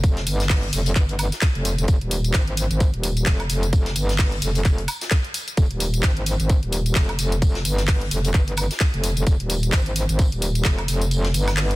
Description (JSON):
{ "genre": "bass house", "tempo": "130 BPM", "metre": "4/4", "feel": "swing 58% on 16ths", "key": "F minor", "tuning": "A4 = 440 Hz", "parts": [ { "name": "metallic wobble bass", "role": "bass", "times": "0.0-11.8 s", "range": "Eb1 to Ab1", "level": "-22 LUFS", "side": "equal", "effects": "chorus, sidechain pumping" }, { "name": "electronic kick drum", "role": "drums", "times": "0.0-10.8 s", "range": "none", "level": "-18 LUFS", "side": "equal", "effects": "studio reverb" }, { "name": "garage drum kit", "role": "drums", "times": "0.0-11.8 s", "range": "handclaps, hi-hat, tambourine, woodblock", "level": "-26 LUFS", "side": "equal", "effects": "studio reverb" }, { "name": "vintage brush drum kit", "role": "drums", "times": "0.0-11.7 s", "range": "hi-hat, snare drum, tambourine", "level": "-34 LUFS", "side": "left 1 dB", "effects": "high-pass filter on hats, studio reverb, high-pass filter on snare, high-pass filter on perc, high-pass filter on room" } ], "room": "small room ambience", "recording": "dense, heavily limited modern master", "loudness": "-19 LUFS", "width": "side -19 dB against mid", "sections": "0.0-11.8 A section", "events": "kick drops out 11.1-11.8", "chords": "none" }